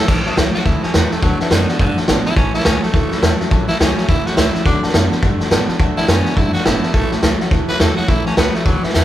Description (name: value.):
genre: rockabilly.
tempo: 210 BPM.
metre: 4/4.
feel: swing 61% on 8ths.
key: A major.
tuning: A4 = 440 Hz.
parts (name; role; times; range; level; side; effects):
breathy tenor saxophone; melody; 0.0-9.0 s; D3 to B4; -22 LUFS; equal; none.
dark upright piano; accompaniment; 0.0-9.0 s; C#5 to B5; -28 LUFS; left 4 dB; none.
picked steel-string acoustic guitar; accompaniment; 0.0-9.0 s; A2 to A4; -27 LUFS; left 4 dB; none.
electric guitar at the edge of break-up; riff; 0.0-9.0 s; A2 to B3; -24 LUFS; right 3 dB; none.
upright bass; bass; 0.1-9.0 s; G1 to A2; -20 LUFS; equal; none.
vintage drum kit; drums; 0.1-9.0 s; crash cymbal, hi-hat, kick drum, snare drum; -16 LUFS; equal; none.
room: light reverb.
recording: band playing live in one room.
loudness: -13 LUFS.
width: side -13 dB against mid.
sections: 0.1-9.0 A section.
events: none.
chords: 0.1 A6; 1.2 D6; 2.4 A6; 4.7 D6; 6.9 A6.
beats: | 0.08 0.37 0.65 0.94 | 1.23 1.51 1.80 2.08 | 2.37 2.65 2.94 3.23 | 3.51 3.80 4.08 4.37 | 4.66 4.94 5.23 5.51 | 5.80 6.08 6.37 6.66 | 6.94 7.23 7.51 7.80 | 8.09 8.37 8.66 8.95.